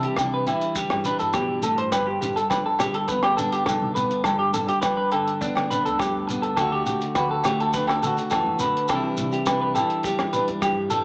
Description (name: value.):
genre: highlife guitar band.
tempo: 103 BPM.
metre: 4/4.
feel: straight.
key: G major.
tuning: A4 = 442 Hz.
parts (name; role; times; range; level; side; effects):
clean electric guitar; accompaniment; 0.0-11.0 s; G2 to F#4; -28 LUFS; equal; none.
semi-hollow electric guitar; arpeggios; 0.0-11.0 s; D4 to C5; -23 LUFS; equal; analog chorus, tape echo.
upright bass; bass; 0.0-11.0 s; G1 to D3; -34 LUFS; equal; none.
compact cocktail drum kit; drums; 0.0-11.0 s; hi-hat, kick drum, rim click; -32 LUFS; equal; cassette tape.
agogo bells; percussion; 0.2-10.8 s; none; -28 LUFS; equal; none.
shekere; percussion; 0.2-11.0 s; none; -34 LUFS; equal; none.
room: moderate spring reverb, RT60 2.5 s.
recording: home recording on cassette, small speaker sound.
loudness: -20 LUFS.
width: side -31 dB against mid.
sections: 0.0-11.0 A section.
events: none.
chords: 0.0 Cadd9; 1.9 Gadd9; 6.6 D; 8.9 Cadd9.